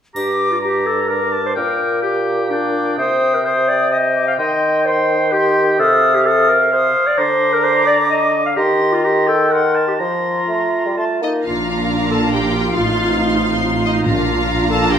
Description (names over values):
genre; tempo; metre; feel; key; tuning
classical, dramatic, fast romantic movement for symphony orchestra; 121-141 BPM; 3/4; rubato; G minor, Bb major from 5.8 s; A4 = 440 Hz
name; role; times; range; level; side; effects
clear oboe; second line; 0.1-11.2 s; F5 to Bb5; -21 LUFS; right 1 dB; none
bright silver concert flute; second line; 0.2-11.0 s; C6 to Eb6; -22 LUFS; left 3 dB; none
warm clarinet; second line; 0.2-15.0 s; D4 to F5; -18 LUFS; equal; none
mellow bassoon; accompaniment; 0.2-11.5 s; G2 to Bb3; -19 LUFS; equal; none
triangle; percussion; 0.2-1.1 s; none; -36 LUFS; left 4 dB; none
bright symphonic violin section; melody; 11.2-15.0 s; Eb5 to A5; -24 LUFS; left 2 dB; none
rich symphonic violin section; second line; 11.4-15.0 s; F5 to C6; -22 LUFS; left 1 dB; none
dark French horn section; sustained chords; 11.4-15.0 s; Bb3 to Eb4; -24 LUFS; left 2 dB; none
clear chamber double bass section; bass; 11.4-15.0 s; A1 to Bb1; -23 LUFS; right 3 dB; none
rich symphonic viola section; accompaniment; 11.5-15.0 s; D4 to F4; -22 LUFS; right 2 dB; none
rich chamber cello section; bass; 11.5-15.0 s; A2 to Bb2; -24 LUFS; right 3 dB; none
timpani; percussion; 14.1-14.7 s; Bb2; -26 LUFS; left 1 dB; none
room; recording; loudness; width
wet recital hall reverb, RT60 1.3 s; minimal, uncompressed stereo recording; -14 LUFS; side -8 dB against mid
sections
0.2-11.5 A section; 11.5-15.0 B section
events
none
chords
0.2 Gm; 1.6 Gm/Bb; 3.0 Cm; 4.4 Cm/Eb; 5.8 F5/C; 7.2 Bb/D; 8.6 Cm7/Eb; 10.0 Fsus4; 11.0 F/A; 11.5 Bb; 12.8 F7/A; 14.1 Bb